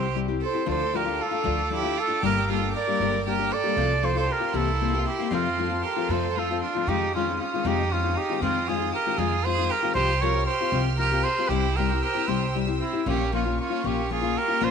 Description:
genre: mexican folk, mariachi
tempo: 78 BPM (dotted quarters)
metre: 6/8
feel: straight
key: F major, F minor from 6.9 s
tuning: A4 = 439 Hz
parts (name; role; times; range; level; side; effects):
- mellow trumpet; melody; 0.0-14.7 s; E4 to D5; -27 LUFS; right 1 dB; slapback echo
- bright violin; second line; 0.0-14.7 s; C4 to Bb4; -30 LUFS; right 15 dB; none
- nylon-string guitar; accompaniment; 0.0-14.7 s; F2 to G4; -28 LUFS; left 12 dB; none
- upright bass; bass; 0.0-14.7 s; G1 to F2; -29 LUFS; right 1 dB; none
- warm symphonic violin section; sustained chords; 0.7-14.7 s; Bb3 to F6; -36 LUFS; right 2 dB; none
room: light reverb, small room reverb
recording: 1960s-style stereo with parts hard left and right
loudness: -22 LUFS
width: side -6 dB against mid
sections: 0.0-6.9 A section; 6.9-14.7 B section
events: none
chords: 0.0 C; 0.7 Dm; 2.2 Gm; 3.8 F/C; 4.5 C7; 5.3 F; 6.9 Fm7; 9.9 Csus4; 11.5 C; 13.1 Bbm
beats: | 0.68 1.46 | 2.23 2.99 | 3.76 4.53 | 5.30 6.09 | 6.88 7.65 | 8.42 9.18 | 9.95 10.72 | 11.49 12.27 | 13.06 13.84 | 14.61

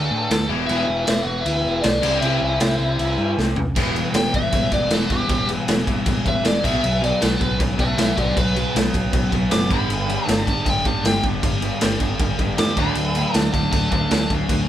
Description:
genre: punk rock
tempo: 156 BPM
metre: 4/4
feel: straight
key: E minor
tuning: A4 = 445 Hz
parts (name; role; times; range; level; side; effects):
- biting lead guitar; melody; 0.0-14.3 s; D4 to D6; -23 LUFS; left 1 dB; overdrive
- distorted electric guitar; riff; 0.0-14.7 s; E2 to D4; -29 LUFS; equal; overdrive
- picked electric bass; bass; 0.0-14.7 s; E1 to A2; -26 LUFS; equal; none
- raw garage drum kit; drums; 0.3-14.6 s; crash cymbal, kick drum, snare drum, toms; -21 LUFS; equal; none
- distorted electric guitar; riff; 0.5-14.7 s; G2 to E4; -28 LUFS; left 6 dB; overdrive
- overdriven electric guitar; riff; 0.5-14.7 s; E2 to D4; -28 LUFS; right 4 dB; none
room: light reverb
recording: band playing live in one room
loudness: -18 LUFS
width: side -11 dB against mid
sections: 0.0-3.8 A section; 3.8-14.7 B section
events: drum fill 3.4-3.8; lead electric guitar solo 3.8-14.7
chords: 0.0 D5; 0.5 Em; 2.0 C; 3.8 Em; 6.6 B5; 9.7 G; 12.8 D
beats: 0.31 | 0.69 1.08 1.46 1.84 | 2.23 2.61 3.00 3.38 | 3.76 4.15 4.53 4.91 | 5.30 5.68 6.06 6.45 | 6.83 7.21 7.60 7.98 | 8.36 8.74 9.13 9.51 | 9.89 10.28 10.66 11.04 | 11.43 11.81 12.19 12.58 | 12.96 13.34 13.73 14.11 | 14.49

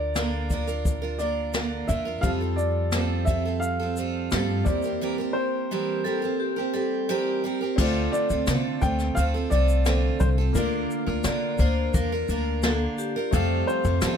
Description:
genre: acoustic pop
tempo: 87 BPM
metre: 4/4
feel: straight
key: unclear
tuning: A4 = 439 Hz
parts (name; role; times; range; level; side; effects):
- dark upright piano; melody; 0.0-14.2 s; Bb4 to G5; -30 LUFS; equal; none
- picked steel-string acoustic guitar; accompaniment; 0.0-14.2 s; D3 to Bb4; -28 LUFS; right 6 dB; none
- upright bass; bass; 0.0-14.2 s; C2 to F3; -26 LUFS; left 1 dB; none
- jazz brush drum kit; drums; 0.2-14.2 s; crash cymbal, kick drum, shaker, snare drum; -27 LUFS; left 1 dB; none
- warm concert grand piano; accompaniment; 2.2-14.2 s; G3 to F5; -34 LUFS; left 7 dB; none
- vibraphone with medium mallets; second line; 6.0-13.5 s; G4 to D5; -30 LUFS; left 7 dB; none
room: little or no reverb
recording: none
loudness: -22 LUFS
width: side -8 dB against mid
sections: 0.0-7.8 A section; 7.8-14.2 B section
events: none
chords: 0.0 Bb/D; 2.2 Fadd9; 4.7 C7/E; 7.8 Dm7; 10.6 Bb/D; 13.3 Fadd9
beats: 0.16 0.85 1.55 | 2.24 2.93 3.62 4.32 | 5.01 5.70 6.40 7.09 | 7.78 8.48 9.17 9.86 | 10.55 11.25 11.94 12.63 | 13.32 14.02

